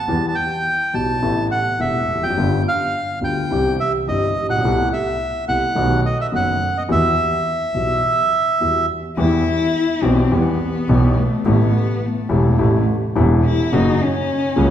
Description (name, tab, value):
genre	tango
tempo	106 BPM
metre	4/4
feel	rubato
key	E harmonic minor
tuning	A4 = 439 Hz
part	bandoneon	melody	0.0-8.9 s	D#5 to A5	-20 LUFS	right 2 dB	none
part	warm baby grand piano	accompaniment	0.1-14.7 s	E1 to G4	-20 LUFS	left 1 dB	none
part	dark double bass	bass	0.1-14.7 s	E1 to E2	-22 LUFS	right 1 dB	none
part	dark cello	second line	9.2-14.7 s	A3 to E4	-21 LUFS	left 3 dB	none
room	wet recital hall reverb, RT60 1.8 s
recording	recorded in a church or concert hall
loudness	-16 LUFS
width	side -10 dB against mid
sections	0.0-9.2 A section; 9.2-14.7 B section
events	cello solo 9.2-14.7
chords	0.1 Em; 1.2 Amadd9; 2.4 G7; 3.5 C; 4.6 Amadd9/C; 5.8 B7; 6.9 Emadd9; 9.2 Em; 11.5 Am; 13.7 F#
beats	| 0.08 0.65 1.22 1.79 | 2.37 2.93 3.50 4.07 | 4.63 5.20 5.76 6.33 | 6.89 7.46 8.03 8.60 | 9.18 9.75 10.32 10.89 | 11.46 12.03 12.60 13.16 | 13.73 14.29